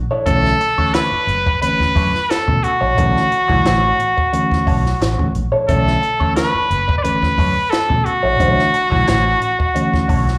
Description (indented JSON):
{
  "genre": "funk",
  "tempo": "88 BPM",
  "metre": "4/4",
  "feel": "straight",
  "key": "B minor",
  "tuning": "A4 = 439 Hz",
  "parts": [
    { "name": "vintage muted fingered electric bass", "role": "bass", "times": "0.0-10.4 s", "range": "F#1 to B2", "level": "-23 LUFS", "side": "equal", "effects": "none" },
    { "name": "direct-recorded clean electric guitar", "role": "accompaniment", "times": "0.1-10.3 s", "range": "D4 to C#5", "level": "-26 LUFS", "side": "equal", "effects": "wah, lush chorus, plate reverb, slapback echo" },
    { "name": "bright trumpet", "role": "melody", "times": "0.3-10.4 s", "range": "F#4 to D5", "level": "-19 LUFS", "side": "equal", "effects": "slapback echo" },
    { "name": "mellow reed electric piano", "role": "stabs", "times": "0.3-10.2 s", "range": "C#3 to E4", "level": "-25 LUFS", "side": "equal", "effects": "plate reverb, slapback echo" },
    { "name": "compact cocktail drum kit", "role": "drums", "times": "0.3-10.4 s", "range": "hi-hat, kick drum, snare drum", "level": "-23 LUFS", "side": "equal", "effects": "none" }
  ],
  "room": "moderate club reverb, RT60 0.6 s",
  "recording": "live gig heard through the venue's PA, club reverb",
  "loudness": "-16 LUFS",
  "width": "mono",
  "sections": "0.0-10.4 A section",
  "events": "none",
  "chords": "0.0 Bm11"
}